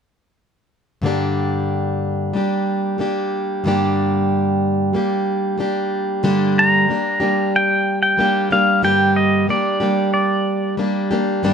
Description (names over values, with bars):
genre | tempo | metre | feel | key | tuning
folk | 92 BPM | 4/4 | straight | G minor | A4 = 439 Hz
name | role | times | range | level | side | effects
picked plugged-in steel-string acoustic guitar | accompaniment | 1.0-11.5 s | G2 to G4 | -18 LUFS | equal | none
pedal steel guitar | melody | 6.6-10.7 s | D5 to Bb5 | -17 LUFS | equal | none
room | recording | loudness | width
little or no reverb | close, detailed microphones | -16 LUFS | side -7 dB against mid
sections
1.0-6.2 A section; 6.2-11.5 B section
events
none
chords
1.0 Gm